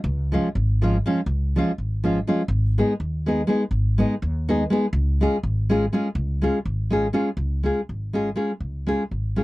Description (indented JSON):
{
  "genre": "balkan folk, Balkan wedding band",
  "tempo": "246 BPM (eighths)",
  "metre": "5/8",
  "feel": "straight",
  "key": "Db mixolydian",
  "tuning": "A4 = 440 Hz",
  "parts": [
    { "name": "upright bass", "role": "bass", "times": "0.0-9.4 s", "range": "Ab1 to Eb2", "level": "-23 LUFS", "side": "equal", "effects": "none" },
    { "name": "nylon-string guitar", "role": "accompaniment", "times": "0.3-9.4 s", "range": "F3 to Ab4", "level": "-21 LUFS", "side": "equal", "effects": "none" }
  ],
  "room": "light reverb",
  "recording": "dry, close 1970s-style studio recording",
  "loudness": "-20 LUFS",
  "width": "side -19 dB against mid",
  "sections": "0.0-7.4 A section; 7.4-9.4 B section",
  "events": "none",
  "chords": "0.0 Db; 2.5 Abm; 4.9 Db",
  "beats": "| 0.04 0.29 0.53 0.78 1.02 | 1.27 1.51 1.76 2.00 2.25 | 2.49 2.73 2.98 3.22 3.47 | 3.71 3.96 4.20 4.44 4.69 | 4.93 5.18 5.42 5.66 5.91 | 6.15 6.40 6.64 6.88 7.13 | 7.37 7.62 7.86 8.11 8.35 | 8.59 8.84 9.08 9.33"
}